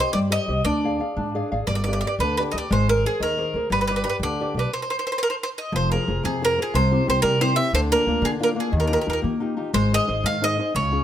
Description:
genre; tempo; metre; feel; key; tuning
italian folk, Italian serenade; 119 BPM (dotted quarters); 6/8; rubato; F minor from 5.7 s; A4 = 442 Hz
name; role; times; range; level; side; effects
bowl-back mandolin; melody; 0.0-11.0 s; Ab4 to F5; -23 LUFS; right 1 dB; none
nylon-string guitar; accompaniment; 0.0-11.0 s; C3 to F5; -25 LUFS; left 2 dB; none
upright bass; bass; 0.1-11.0 s; F1 to Eb3; -25 LUFS; equal; none
room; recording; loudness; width
light reverb; close, detailed microphones; -20 LUFS; side -10 dB against mid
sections
0.0-5.7 A section; 5.7-11.0 B section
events
nylon-string guitar fill 1.2-1.7; stop 4.7-5.7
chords
0.0 Cm; 0.6 Ddim; 1.7 G; 2.7 Abadd9; 3.7 G; 4.7 N.C.; 5.7 Fm; 6.7 C; 7.7 Bb/D; 8.7 Ebadd9; 9.7 Ab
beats
0.13 | 0.64 1.16 | 1.68 2.19 | 2.70 3.20 | 3.70 4.20 | 4.71 5.22 | 5.73 6.24 | 6.74 7.24 | 7.73 8.23 | 8.73 9.24 | 9.74 10.25 | 10.75

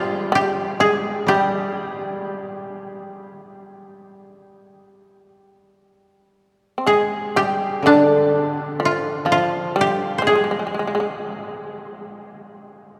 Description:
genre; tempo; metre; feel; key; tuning
japanese traditional, Japanese chamber music; 56-64 BPM; 4/4; rubato; G in sen; A4 = 440 Hz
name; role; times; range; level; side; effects
koto; melody; 0.0-12.2 s; D4 to C5; -22 LUFS; equal; none
shamisen; second line; 0.0-11.1 s; D3 to C4; -27 LUFS; equal; none
koto; accompaniment; 0.0-12.1 s; D3 to G3; -28 LUFS; equal; none
room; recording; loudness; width
wet cathedral reverb, RT60 6.1 s; recorded in a church or concert hall; -20 LUFS; mono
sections
0.0-5.3 A section; 5.3-13.0 B section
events
none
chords
none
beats
0.31 | 1.27 2.25 3.25 4.30 | 5.35 6.36 7.36 8.32 | 9.28 10.24 11.18 12.12

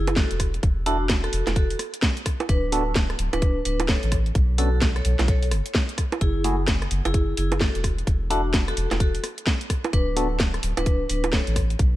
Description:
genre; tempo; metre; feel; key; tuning
UK garage, two-step garage; 129 BPM; 4/4; swing 62% on 16ths; unclear; A4 = 440 Hz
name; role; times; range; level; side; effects
vibraphone with hard mallets; melody; 0.0-11.6 s; D4 to C#5; -30 LUFS; left 1 dB; ping-pong delay
soft dub sub bass; bass; 0.0-12.0 s; D1 to B1; -25 LUFS; equal; sidechain pumping
garage drum kit; drums; 0.1-11.9 s; bongos, hi-hat, rim click, snare drum; -26 LUFS; right 1 dB; none
electronic kick drum; drums; 0.2-11.9 s; none; -23 LUFS; equal; none
percussive organ stab; stabs; 0.9-10.3 s; A3 to A4; -29 LUFS; right 1 dB; chorus
room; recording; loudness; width
digital ambience; dark, warm production; -20 LUFS; side -15 dB against mid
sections
0.0-12.0 A section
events
none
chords
0.4 Esus4; 2.5 D5; 4.4 B7sus2; 6.2 F#m9; 7.8 Esus2; 9.9 D5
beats
0.17 | 0.63 1.10 1.56 2.03 | 2.49 2.96 3.42 3.89 | 4.35 4.82 5.28 5.75 | 6.21 6.68 7.14 7.61 | 8.07 8.54 9.00 9.47 | 9.93 10.40 10.86 11.33 | 11.79

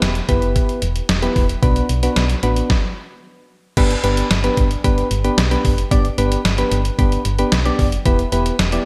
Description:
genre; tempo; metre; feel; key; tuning
synth-pop; 112 BPM; 4/4; straight; G major; A4 = 440 Hz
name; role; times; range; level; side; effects
soft electric-piano-like synth keys; accompaniment; 0.0-8.9 s; B3 to D5; -22 LUFS; equal; chorus
solid FM bass; bass; 0.0-8.8 s; E1 to B1; -22 LUFS; equal; none
detuned 8-bit digital drum machine; drums; 0.0-8.8 s; crash cymbal, hi-hat, kick drum, snare drum; -21 LUFS; equal; gated reverb
room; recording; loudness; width
light reverb; bright 1980s-style digital production; -17 LUFS; mono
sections
0.0-3.8 A section; 3.8-8.9 B section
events
stop 2.7-3.8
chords
0.0 Em; 1.6 Bm; 2.7 N.C.; 3.8 G; 8.1 Em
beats
0.02 0.56 1.09 | 1.63 2.16 2.70 3.23 | 3.77 4.31 4.84 5.38 | 5.91 6.45 6.99 7.52 | 8.06 8.59

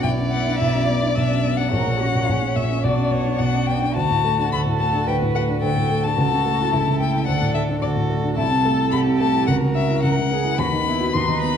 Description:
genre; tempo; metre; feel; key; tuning
quick classical-period movement for piano quartet; 108 BPM; 4/4; rubato; B minor; A4 = 441 Hz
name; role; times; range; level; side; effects
rich violin; melody; 0.0-11.6 s; C#5 to C6; -24 LUFS; left 7 dB; none
rich violin; second line; 0.0-11.6 s; F#4 to D5; -30 LUFS; left 2 dB; none
warm cello; second line; 0.0-11.6 s; C#4 to B4; -27 LUFS; right 7 dB; none
warm baby grand piano; accompaniment; 0.0-11.6 s; A#1 to F#4; -20 LUFS; equal; none
room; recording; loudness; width
moderate scoring stage reverb, RT60 2.1 s; dark, warm production; -18 LUFS; side -8 dB against mid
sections
0.0-11.6 A section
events
none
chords
0.0 Bm; 1.7 F#/A#; 2.8 Bm; 4.0 D; 6.2 A/C#; 7.3 D; 8.4 Am/C; 9.5 F#7/C#; 10.6 B/D#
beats
0.03 0.59 1.15 | 1.71 2.28 2.84 3.39 | 3.96 4.52 5.07 5.62 | 6.18 6.73 7.27 7.82 | 8.37 8.92 9.47 10.03 | 10.58 11.14

